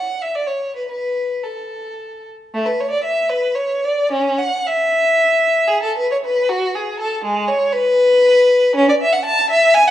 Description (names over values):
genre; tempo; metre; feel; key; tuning
classical, baroque-style suite movement for unaccompanied violin; 105-122 BPM; 3/4; rubato; A major; A4 = 440 Hz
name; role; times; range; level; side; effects
rich violin; solo; 0.0-9.9 s; G#3 to A5; -15 LUFS; left 1 dB; none
room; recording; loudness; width
moderate recital hall reverb, RT60 1.6 s; dark, warm production, nothing above 10.7 kHz; -14 LUFS; side -12 dB against mid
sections
0.0-2.6 A section; 2.6-9.9 B section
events
none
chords
none